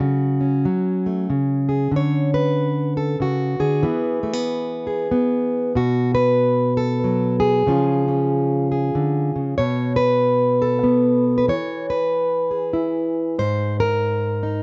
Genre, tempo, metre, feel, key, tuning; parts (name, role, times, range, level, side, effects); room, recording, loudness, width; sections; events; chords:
folk, solo fingerstyle acoustic guitar; 94 BPM; 3/4; swing 62% on 8ths; A4 = 440 Hz
fingerpicked plugged-in steel-string acoustic guitar; solo; 0.0-14.6 s; G#2 to C#5; -20 LUFS; equal
light reverb; nothing above 7.6 kHz; -20 LUFS; mono
0.0-1.9 A section; 1.9-14.6 B section
0.0 F#m/C#; 1.3 C#5; 1.9 D; 3.8 E; 5.8 B5; 7.7 C#; 9.6 N.C.; 11.5 E; 13.4 G#5